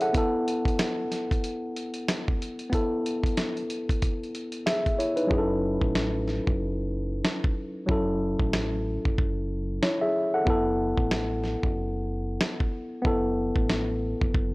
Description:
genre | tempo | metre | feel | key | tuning
hip hop, boom-bap hip-hop | 93 BPM | 4/4 | swing 60% on 16ths | F# minor | A4 = 441 Hz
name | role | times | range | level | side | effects
tine electric piano | accompaniment | 0.0-14.5 s | F#3 to F#5 | -27 LUFS | left 1 dB | high-pass filter, low-pass filter
dusty soul sampler-style drum kit | drums | 0.0-14.5 s | hi-hat, kick drum, snare drum | -27 LUFS | equal | none
deep dub fingered electric bass | bass | 5.3-14.5 s | F#1 to A1 | -32 LUFS | equal | none
room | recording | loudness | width
digital ambience | dry, gritty hardware recording | -25 LUFS | side -23 dB against mid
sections
0.0-5.3 A section; 5.3-14.5 B section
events
break 0.1-5.3; hi-hats muted 5.3-14.5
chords
0.1 B7sus4; 5.3 F#m7; 10.5 B7sus4/F#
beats
| 0.14 0.79 1.44 2.08 | 2.73 3.37 4.02 4.66 | 5.31 5.95 6.60 7.24 | 7.89 8.53 9.18 9.82 | 10.47 11.11 11.76 12.40 | 13.05 13.69 14.34

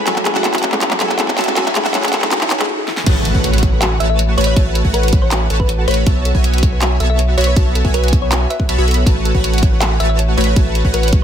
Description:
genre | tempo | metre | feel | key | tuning
future bass | 160 BPM | 4/4 | half-time | A major | A4 = 440 Hz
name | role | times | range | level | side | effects
felt-muted upright piano | accompaniment | 0.0-2.7 s | G#3 to F#4 | -25 LUFS | left 4 dB | sidechain pumping, ping-pong delay
supersaw stab | riff | 0.0-11.2 s | F#3 to B5 | -20 LUFS | equal | analog chorus, sidechain pumping
riser and impact | sound effects | 0.0-4.6 s | none | -25 LUFS | right 1 dB | none
soft round pluck | arpeggios | 0.1-11.2 s | F#4 to G#5 | -28 LUFS | left 4 dB | chorus, sidechain pumping, ping-pong delay
pop drum kit | drums | 0.1-11.2 s | crash cymbal, handclaps, hi-hat, snare drum | -19 LUFS | equal | none
saturated sub bass | bass | 3.1-11.2 s | A1 to B1 | -16 LUFS | equal | sidechain pumping
electronic kick drum | drums | 3.1-11.2 s | none | -15 LUFS | equal | none
thumb-piano-like synth pluck | melody | 4.0-11.1 s | B4 to E5 | -23 LUFS | left 1 dB | chorus, phaser, sidechain pumping, digital delay
room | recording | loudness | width
digital ambience | high-pass filter | -12 LUFS | side -9 dB against mid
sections
0.0-3.1 A section; 3.1-11.2 B section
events
build-up 0.0-3.1; drum fill 0.0-2.7, 2.9; riser 0.0-2.7; break 2.7-3.1; drop 3.1-11.2; impact 3.1-4.6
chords
0.1 F#m9; 3.1 A69; 6.1 B9sus4; 9.1 A69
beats
| 0.07 0.44 0.81 1.19 | 1.56 1.94 2.31 2.69 | 3.06 3.44 3.81 4.19 | 4.57 4.94 5.32 5.69 | 6.07 6.44 6.82 7.19 | 7.57 7.94 8.31 8.69 | 9.06 9.44 9.81 10.19 | 10.56 10.94

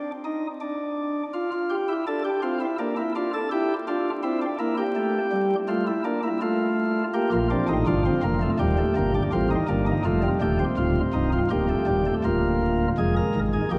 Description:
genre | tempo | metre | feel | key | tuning
classical, baroque-style 4-part fugue for pipe organ | 82 BPM | 4/4 | straight | Bb major | A4 = 440 Hz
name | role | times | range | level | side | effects
chamber organ, sparkling flutes | solo | 0.0-13.8 s | C1 to Bb4 | -24 LUFS | equal | none
room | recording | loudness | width
wet cathedral reverb, RT60 5.6 s | vinyl crackle | -24 LUFS | mono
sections
0.0-13.0 A section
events
none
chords
0.0 N.C.; 1.3 F; 2.8 Bb; 4.2 C7; 5.7 F/A; 7.1 Bb; 8.6 Eb; 10.1 F7; 11.5 Bb/D; 13.0 Bb5/F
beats
0.61 | 1.33 2.06 2.78 3.51 | 4.23 4.95 5.68 6.41 | 7.14 7.87 8.60 9.32 | 10.05 10.78 11.51 12.25 | 12.98 13.71

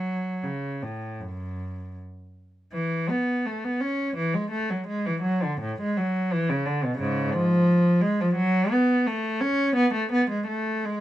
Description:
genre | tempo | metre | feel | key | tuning
classical, baroque-style suite movement for unaccompanied cello | 76-88 BPM | 4/4 | rubato | A major | A4 = 440 Hz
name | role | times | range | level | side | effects
rich cello | solo | 0.0-11.0 s | F#2 to C#4 | -23 LUFS | equal | none
room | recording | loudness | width
light reverb | minimal, uncompressed stereo recording | -23 LUFS | side -13 dB against mid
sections
0.0-2.7 A section; 2.7-11.0 A section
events
none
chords
none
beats
0.44 1.21 1.97 | 2.74 3.45 4.16 4.87 | 5.60 6.32 7.00 7.68 | 8.37 9.06 9.75 10.47

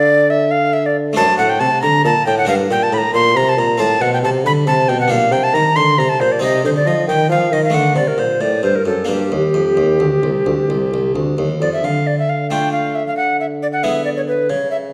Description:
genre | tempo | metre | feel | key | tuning
classical, baroque-style sonata movement with continuo | 91 BPM (dotted quarters) | 12/8 | straight | G minor | A4 = 440 Hz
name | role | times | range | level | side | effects
tenor recorder | melody | 0.0-14.8 s | G4 to C6 | -18 LUFS | equal | none
harpsichord | accompaniment | 0.0-14.9 s | C2 to C5 | -23 LUFS | equal | none
dark bassoon | bass | 0.0-14.9 s | C2 to F3 | -22 LUFS | equal | none
room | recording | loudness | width
wet recital hall reverb, RT60 1.3 s | none | -16 LUFS | mono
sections
0.0-11.8 A section; 11.8-14.9 A section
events
none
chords
0.0 Dm; 1.2 D7/F#; 2.5 Gm; 3.8 Amadd9; 5.1 Gm/Bb; 6.4 Cm; 7.7 D; 9.1 G5; 11.8 Dm; 13.2 E7/D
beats
0.52 | 1.17 1.83 2.49 3.15 | 3.80 4.46 5.11 5.76 | 6.42 7.08 7.74 8.41 | 9.09 9.78 10.47 11.15 | 11.84 12.51 13.17 13.84 | 14.49

